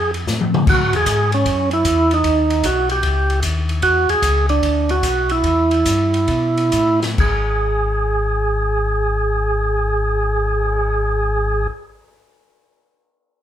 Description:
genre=soul jazz organ trio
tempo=129-152 BPM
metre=4/4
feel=swing 66% on 8ths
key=unclear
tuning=A4 = 440 Hz
part: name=percussive tonewheel organ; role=melody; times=0.0-11.7 s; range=C#4 to G#4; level=-17 LUFS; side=right 2 dB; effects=slow rotary speaker
part: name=mellow tonewheel organ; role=bass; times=0.0-11.7 s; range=G#1 to B2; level=-21 LUFS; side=left 1 dB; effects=slow rotary speaker
part: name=open jazz drum kit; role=drums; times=0.1-10.8 s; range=crash cymbal, cymbal swell, hi-hat, kick drum, ride cymbal, snare drum, toms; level=-22 LUFS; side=left 2 dB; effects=none
room=light reverb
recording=band playing live in one room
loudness=-15 LUFS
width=side -10 dB against mid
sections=0.7-7.2 A section; 7.2-10.9 B section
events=drum fill 0.3-0.7; slowing down 3.8-7.2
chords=0.0 F; 0.7 A#m7b5; 2.2 D#7; 3.8 E7; 5.4 A5; 7.2 N.C.

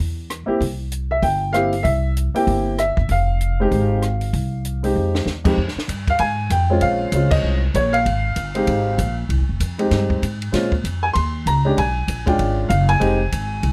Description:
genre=jazz piano trio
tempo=193 BPM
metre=4/4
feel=swing 61% on 8ths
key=F minor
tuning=A4 = 441 Hz
part: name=upright bass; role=bass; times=0.0-13.7 s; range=F1 to Bb2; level=-23 LUFS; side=equal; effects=none
part: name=compact cocktail drum kit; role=drums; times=0.3-13.7 s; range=crash cymbal, hi-hat, kick drum, ride cymbal, rim click, snare drum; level=-29 LUFS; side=equal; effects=none
part: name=clear upright piano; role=melody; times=0.5-13.7 s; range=F2 to C6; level=-22 LUFS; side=equal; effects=none
room=light reverb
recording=none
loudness=-20 LUFS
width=mono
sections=0.0-5.6 A section; 5.6-13.7 A section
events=drum fill 5.0-5.3; band accent 7.3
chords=0.0 C7; 3.1 Fm7; 5.6 Fm; 6.8 Bbm7; 8.1 Fm7; 10.5 Bbm7; 11.8 Bdim7; 13.0 Fm7

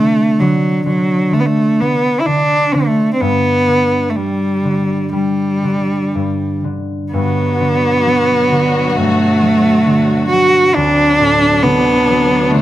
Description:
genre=celtic folk, Celtic slow air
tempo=58-68 BPM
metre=4/4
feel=rubato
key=G major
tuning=A4 = 440 Hz
part: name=rich cello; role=melody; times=0.0-12.6 s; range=F#3 to F#4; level=-13 LUFS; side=equal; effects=slapback echo
part: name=concert harp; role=accompaniment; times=0.0-12.6 s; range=D2 to G3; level=-17 LUFS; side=equal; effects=slapback echo
part: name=rich studio string section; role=sustained chords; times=7.1-12.6 s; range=B2 to F#4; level=-20 LUFS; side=left 2 dB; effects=none
room=little or no reverb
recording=recorded outdoors, with no room sound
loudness=-11 LUFS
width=side -14 dB against mid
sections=0.0-7.1 A section; 7.1-12.6 B section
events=none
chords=0.0 N.C.; 3.2 G; 7.1 Gmaj7; 10.8 D7

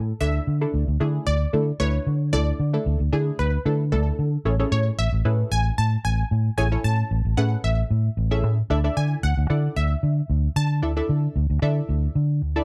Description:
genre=dance-pop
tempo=113 BPM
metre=4/4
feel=straight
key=A major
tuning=A4 = 440 Hz
part: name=unison pluck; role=melody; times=0.0-11.6 s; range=A4 to A5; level=-32 LUFS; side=equal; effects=phaser, slapback echo
part: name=punchy chord stab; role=accompaniment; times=0.0-12.6 s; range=A3 to F#5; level=-30 LUFS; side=equal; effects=chorus, phaser
part: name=vintage muted fingered electric bass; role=bass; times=0.0-12.6 s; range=A1 to D3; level=-24 LUFS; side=equal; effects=none
room=little or no reverb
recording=dry, close 1970s-style studio recording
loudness=-23 LUFS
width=mono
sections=0.0-4.5 A section; 4.5-12.6 B section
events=build-up 0.0-4.5; drop 4.5-12.6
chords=0.2 Dsus2; 4.5 Amaj7; 8.7 Dsus2

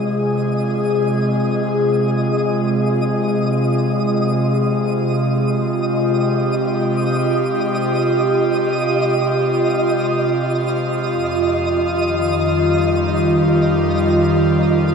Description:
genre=ambient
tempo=free time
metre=none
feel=none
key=F minor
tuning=A4 = 438 Hz
part: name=airy breathy pad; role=sustained chords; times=0.0-14.9 s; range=F2 to Bb4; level=-16 LUFS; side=equal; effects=chorus
part: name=twinkling granular texture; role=texture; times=0.0-14.9 s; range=Eb5 to Eb6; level=-24 LUFS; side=equal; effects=built-in reverb, shimmer reverb
room=wet huge ambient reverb, RT60 8.2 s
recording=dark, warm production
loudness=-15 LUFS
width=side -6 dB against mid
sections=0.0-14.9 A section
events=none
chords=0.0 Fm; 11.1 Ebadd9/F

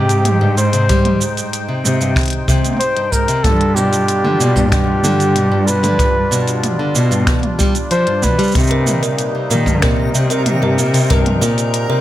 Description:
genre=folktronica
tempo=94 BPM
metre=4/4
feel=straight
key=unclear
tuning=A4 = 440 Hz
part: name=mellow flugelhorn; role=melody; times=0.0-8.6 s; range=G4 to C5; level=-19 LUFS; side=equal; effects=ping-pong delay
part: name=accordion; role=sustained chords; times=0.0-12.0 s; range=C3 to G5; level=-24 LUFS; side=equal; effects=light tremolo tuning
part: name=picked plugged-in steel-string acoustic guitar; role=arpeggios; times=0.0-12.0 s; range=G2 to G3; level=-19 LUFS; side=equal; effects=ping-pong delay
part: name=dark cello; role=bass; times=0.0-11.7 s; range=G2 to Eb3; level=-18 LUFS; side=equal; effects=none
part: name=minimal click drum kit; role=drums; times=0.1-11.9 s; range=finger snaps, hi-hat, shaker, toms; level=-22 LUFS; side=right 2 dB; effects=none
part: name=kick drum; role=drums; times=0.9-11.2 s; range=none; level=-18 LUFS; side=equal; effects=none
part: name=backwards swelling texture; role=texture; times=9.1-12.0 s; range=Bb4 to Bb5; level=-27 LUFS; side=right 2 dB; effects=built-in reverb
part: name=music box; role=second line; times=8.7-12.0 s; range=Bb4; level=-23 LUFS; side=right 1 dB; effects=ping-pong delay
room=light reverb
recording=none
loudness=-12 LUFS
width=side -13 dB against mid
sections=0.0-12.0 A section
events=none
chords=0.0 Abmaj7; 3.4 G7; 8.6 Cm7

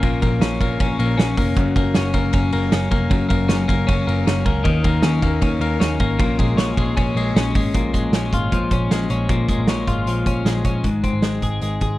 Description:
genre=jangly indie pop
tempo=156 BPM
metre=4/4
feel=straight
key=Bb minor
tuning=A4 = 441 Hz
part: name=twelve-string electric guitar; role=arpeggios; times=0.0-12.0 s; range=Gb2 to Ab4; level=-21 LUFS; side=left 2 dB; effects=tape echo
part: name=vintage muted picked electric bass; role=bass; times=0.0-12.0 s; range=F1 to Eb2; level=-22 LUFS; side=right 1 dB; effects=none
part: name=loose indie drum kit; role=drums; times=0.0-11.9 s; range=hi-hat, kick drum, ride cymbal, snare drum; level=-21 LUFS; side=right 1 dB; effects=none
room=little or no reverb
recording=none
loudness=-17 LUFS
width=side -16 dB against mid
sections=0.0-7.7 A section; 7.7-10.8 B section; 10.8-12.0 C section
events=none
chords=0.0 Bbm; 1.6 Gb; 4.7 Eb5; 6.2 Bbm7; 10.8 Ab

